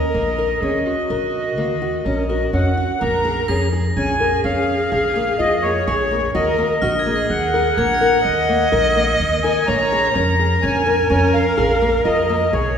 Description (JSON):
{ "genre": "contemporary instrumental, chamber music in an uneven meter", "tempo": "126 BPM", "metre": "7/4", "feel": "straight", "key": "Eb minor", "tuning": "A4 = 441 Hz", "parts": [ { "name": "accordion", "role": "melody", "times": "0.0-12.8 s", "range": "Db5 to Bb5", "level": "-20 LUFS", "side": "equal", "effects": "light tremolo tuning" }, { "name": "warm viola", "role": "second line", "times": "0.0-12.8 s", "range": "Gb4 to Eb5", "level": "-22 LUFS", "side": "right 2 dB", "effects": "none" }, { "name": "nylon-string guitar", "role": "arpeggios", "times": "0.0-12.7 s", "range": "Bb3 to Bb4", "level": "-22 LUFS", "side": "left 3 dB", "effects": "none" }, { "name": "upright bass", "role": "bass", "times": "0.0-12.8 s", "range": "Bb1 to F2", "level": "-23 LUFS", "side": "equal", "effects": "none" }, { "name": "crotales", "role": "texture", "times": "3.5-9.9 s", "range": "F6 to Db7", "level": "-30 LUFS", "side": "equal", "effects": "none" } ], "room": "wet concert hall reverb, RT60 1.9 s", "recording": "recorded in a church or concert hall", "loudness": "-16 LUFS", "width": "side -7 dB against mid", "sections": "0.0-3.0 A section; 3.0-12.8 B section", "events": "none", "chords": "0.0 Ebm7; 3.0 Bbm7; 6.3 Ebmadd9; 9.7 Bbm7", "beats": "0.15 0.62 1.10 1.58 2.06 2.53 | 3.01 3.49 3.96 4.44 4.92 5.39 5.87 | 6.34 6.82 7.30 7.77 8.25 8.72 9.20 | 9.68 10.15 10.63 11.10 11.58 12.05 12.53" }